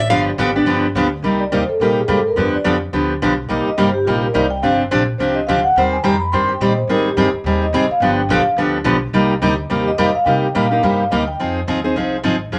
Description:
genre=acoustic string swing (jazz manouche)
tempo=213 BPM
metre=4/4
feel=swing 59% on 8ths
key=C minor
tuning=A4 = 443 Hz
part: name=upright bass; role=bass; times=0.0-12.6 s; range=F1 to C3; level=-27 LUFS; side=equal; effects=none
part: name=picked steel-string acoustic guitar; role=accompaniment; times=0.1-12.6 s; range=C3 to C5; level=-19 LUFS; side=equal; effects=none
part: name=vibraphone with soft mallets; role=second line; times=1.4-11.4 s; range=F4 to C6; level=-21 LUFS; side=equal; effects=none
room=moderate club reverb, RT60 0.6 s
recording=none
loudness=-17 LUFS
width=mono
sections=0.0-1.2 A section; 1.2-10.3 A section; 10.3-12.6 A section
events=vibraphone solo 1.2-12.6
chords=0.1 G7; 1.2 Cm7; 2.4 G7; 3.5 Cm7; 4.6 G7sus4; 5.8 Eb6; 6.9 Abmaj7; 8.0 G7; 9.1 Cm11; 10.3 Cm9; 11.4 Fm7

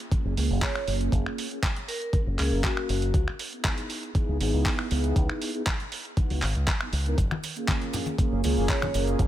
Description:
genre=nu-disco, nu disco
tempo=119 BPM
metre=4/4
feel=straight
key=F# major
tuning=A4 = 441 Hz
part: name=mellow synth brass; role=accompaniment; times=0.0-9.3 s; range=A#3 to E#5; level=-31 LUFS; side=right 2 dB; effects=chorus, sidechain pumping
part: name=dusty soul sampler-style drum kit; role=drums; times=0.0-9.3 s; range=finger snaps, handclaps, hi-hat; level=-32 LUFS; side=right 1 dB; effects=overdrive
part: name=fingered electric bass with an envelope filter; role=bass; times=0.1-9.3 s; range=F#1 to C#2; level=-26 LUFS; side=equal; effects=none
part: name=electronic kick drum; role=drums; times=0.1-9.3 s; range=none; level=-26 LUFS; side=equal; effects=overdrive
part: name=vibraphone with medium hard mallets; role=melody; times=0.6-3.2, 8.7-8.9 s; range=F#4 to C#5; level=-34 LUFS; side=equal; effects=dub echo
part: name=maracas and congas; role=percussion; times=7.2-9.3 s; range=none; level=-34 LUFS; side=left 4 dB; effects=none
room=little or no reverb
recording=none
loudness=-24 LUFS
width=side -12 dB against mid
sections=0.0-9.3 A section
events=filter sweep on analog polysynth 0.0-9.3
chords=0.0 F#maj9; 3.1 C#m9; 7.2 F#maj9

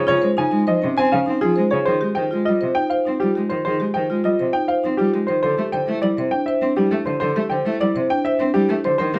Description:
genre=classical, minimalist pattern music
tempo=101 BPM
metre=3/4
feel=straight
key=unclear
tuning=A4 = 439 Hz
part: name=clear concert grand piano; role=melody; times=0.0-9.2 s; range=G4 to Ab5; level=-24 LUFS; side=equal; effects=none
part: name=warm cello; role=accompaniment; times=0.0-9.2 s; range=C3 to C4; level=-26 LUFS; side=equal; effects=none
part: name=marimba with medium mallets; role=arpeggios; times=0.0-9.2 s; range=Db4 to C5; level=-24 LUFS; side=equal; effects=none
room=light reverb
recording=none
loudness=-20 LUFS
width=mono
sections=0.0-1.9 A section; 1.9-9.2 B section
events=none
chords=0.0 Dbmaj7; 1.9 Fm7; 5.4 Am7

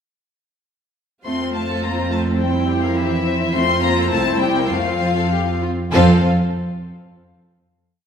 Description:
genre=quick classical-period movement for string orchestra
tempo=98-106 BPM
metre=2/4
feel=straight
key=F major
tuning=A4 = 441 Hz
part: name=dark chamber cello section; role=bass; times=1.2-6.3 s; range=E3 to C4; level=-22 LUFS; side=right 2 dB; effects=none
part: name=warm chamber violin section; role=melody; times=1.3-6.3 s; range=E5 to C6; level=-23 LUFS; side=left 6 dB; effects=none
part: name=warm chamber violin section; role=second line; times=1.3-6.3 s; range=A3 to C5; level=-23 LUFS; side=left 4 dB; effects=none
part: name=warm chamber viola section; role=accompaniment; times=1.3-6.3 s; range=C4 to F4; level=-23 LUFS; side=right 3 dB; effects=none
part: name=warm studio double bass section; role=bass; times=1.3-6.3 s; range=C2 to F2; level=-23 LUFS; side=right 1 dB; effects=none
room=wet recital hall reverb, RT60 1.6 s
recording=heard from further back in the room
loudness=-16 LUFS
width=side -7 dB against mid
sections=1.2-5.9 A section; 5.9-7.1 final chord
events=none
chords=1.2 F; 2.4 C/F; 3.5 F; 4.1 C7; 4.7 F

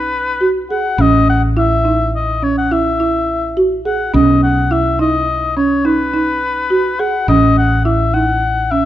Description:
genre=contemporary instrumental, chamber music in an uneven meter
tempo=210 BPM (eighths)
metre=11/8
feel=straight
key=B mixolydian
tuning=A4 = 444 Hz
part: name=warm oboe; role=melody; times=0.0-8.9 s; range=B4 to F#5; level=-17 LUFS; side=left 4 dB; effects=none
part: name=folk marimba with soft mallets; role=arpeggios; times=0.0-8.9 s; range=C#4 to G#4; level=-16 LUFS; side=right 3 dB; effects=none
part: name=woody fretless electric bass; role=bass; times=0.0-8.9 s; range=A1 to B1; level=-18 LUFS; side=left 1 dB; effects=none
room=moderate recital hall reverb, RT60 1.6 s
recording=dark, warm production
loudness=-12 LUFS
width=side -12 dB against mid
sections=0.0-8.9 A section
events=none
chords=0.0 B; 1.0 A; 4.1 Badd9; 7.3 A

